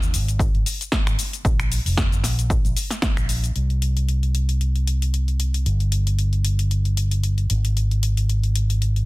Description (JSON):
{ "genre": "nu-disco, nu disco", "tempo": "114 BPM", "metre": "4/4", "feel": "swing 55% on 16ths", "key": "unclear", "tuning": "A4 = 438 Hz", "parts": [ { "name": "fingered electric bass with an envelope filter", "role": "bass", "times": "0.0-9.1 s", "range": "F1 to Eb2", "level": "-20 LUFS", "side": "equal", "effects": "tube saturation, sidechain pumping" }, { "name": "house drum kit", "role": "drums", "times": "0.0-9.1 s", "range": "finger snaps, hi-hat, shaker, snare drum", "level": "-27 LUFS", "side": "left 2 dB", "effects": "small room ambience" }, { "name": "electronic kick drum", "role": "drums", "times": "0.4-3.1 s", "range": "none", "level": "-22 LUFS", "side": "equal", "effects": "small room ambience" } ], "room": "digital ambience", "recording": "dense, heavily limited modern master", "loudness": "-19 LUFS", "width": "side -21 dB against mid", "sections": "0.0-3.6 A section; 3.6-9.1 B section", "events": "none", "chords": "none", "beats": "0.40 0.93 | 1.45 1.98 2.50 3.03 | 3.56 4.08 4.61 5.14 | 5.66 6.19 6.71 7.24 | 7.77 8.29 8.82" }